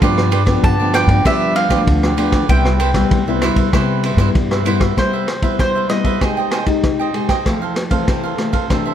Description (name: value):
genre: samba and choro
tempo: 97 BPM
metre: 4/4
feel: straight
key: C major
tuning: A4 = 441 Hz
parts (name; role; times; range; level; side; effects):
- cavaquinho; accompaniment; 0.0-8.9 s; E4 to G5; -22 LUFS; right 7 dB; none
- nylon-string guitar; accompaniment; 0.0-8.9 s; F2 to G4; -19 LUFS; left 4 dB; none
- upright bass; bass; 0.0-4.9 s; C2 to G3; -18 LUFS; equal; none
- vintage drum kit; drums; 0.0-8.8 s; kick drum, ride cymbal, rim click; -19 LUFS; equal; none
- mandolin; melody; 0.6-7.1 s; C5 to A5; -20 LUFS; right 1 dB; none
room: light reverb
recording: none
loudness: -13 LUFS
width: side -10 dB against mid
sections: 0.0-5.0 A section; 5.0-8.9 B section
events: mandolin solo 0.0-5.0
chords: 0.0 G7; 2.5 Cmaj7; 6.2 Abmaj7/C; 7.5 Fmaj7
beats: | 0.02 0.64 1.25 1.87 | 2.49 3.11 3.73 4.35 | 4.97 5.59 6.21 6.84 | 7.46 8.08 8.70